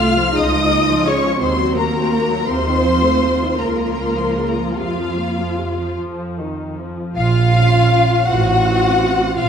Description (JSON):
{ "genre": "classical, slow romantic movement for string orchestra", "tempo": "48-57 BPM (dotted quarters)", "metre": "6/8", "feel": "rubato", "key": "Bb minor", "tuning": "A4 = 439 Hz", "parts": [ { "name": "warm studio violin section", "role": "melody", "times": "0.0-9.5 s", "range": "F5 to F6", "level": "-23 LUFS", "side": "left 4 dB", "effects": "none" }, { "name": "warm studio violin section", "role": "second line", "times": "0.0-9.5 s", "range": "F4 to Gb5", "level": "-20 LUFS", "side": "left 3 dB", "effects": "none" }, { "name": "dark studio viola section", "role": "accompaniment", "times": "0.0-9.3 s", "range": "C3 to Gb4", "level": "-22 LUFS", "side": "left 1 dB", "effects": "none" }, { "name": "rich studio double bass section", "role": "bass", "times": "0.0-9.5 s", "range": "A1 to F2", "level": "-20 LUFS", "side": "right 3 dB", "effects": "none" }, { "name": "warm studio cello section", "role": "bass", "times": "0.0-9.5 s", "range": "F3 to Gb4", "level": "-21 LUFS", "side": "right 3 dB", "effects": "none" } ], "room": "wet scoring stage reverb, RT60 1.8 s", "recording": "none", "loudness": "-14 LUFS", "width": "side -7 dB against mid", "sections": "0.0-7.2 A section; 7.2-9.5 B section", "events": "none", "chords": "0.3 Bbm/Db; 1.4 Cm7b5/Eb; 2.5 F7/Eb; 3.6 Bbm/Db; 4.8 Fsus4; 6.0 Ebsus2/F; 7.2 Bbm; 8.3 F/A", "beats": "| 0.34 1.40 | 2.48 3.60 | 4.79 5.98 | 7.16 8.29 | 9.36" }